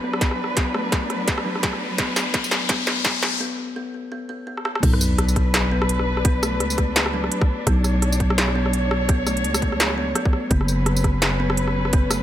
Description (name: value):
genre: half-time drum and bass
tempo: 169 BPM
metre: 4/4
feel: swing 57% on 16ths, half-time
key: B minor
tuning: A4 = 443 Hz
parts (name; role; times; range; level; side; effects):
- warm symphonic cello section; sustained chords; 0.0-12.2 s; F#3 to C#5; -27 LUFS; equal; sidechain pumping
- kalimba; arpeggios; 0.0-12.2 s; F#3 to B3; -28 LUFS; left 1 dB; low-pass filter, ping-pong delay
- riser and sub drop; sound effects; 0.4-6.2 s; none; -28 LUFS; left 2 dB; none
- industrial drum kit; drums; 0.1-12.2 s; crash cymbal, hi-hat, rim click, snare drum, tambourine; -24 LUFS; equal; high-pass filter on hats, high-pass filter on snare, high-pass filter on perc, high-pass filter on cymbals, high-pass filter on room
- electronic kick drum; drums; 0.2-12.0 s; none; -21 LUFS; equal; overdrive
- growling 808-style bass; bass; 4.8-12.2 s; F#1 to C#2; -22 LUFS; equal; none
room: light reverb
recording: high-pass filter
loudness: -18 LUFS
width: side -12 dB against mid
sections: 0.0-4.8 A section; 4.8-12.2 B section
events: build-up 0.0-4.8; drum fill 0.0-3.4, 4.6; filter sweep on kalimba 0.0-4.8; filter sweep 0.0-4.8; riser 0.4-3.4; break 3.4-4.8; drop 4.8-12.2; impact 4.8-6.2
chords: 0.0 Bm; 10.5 F#sus4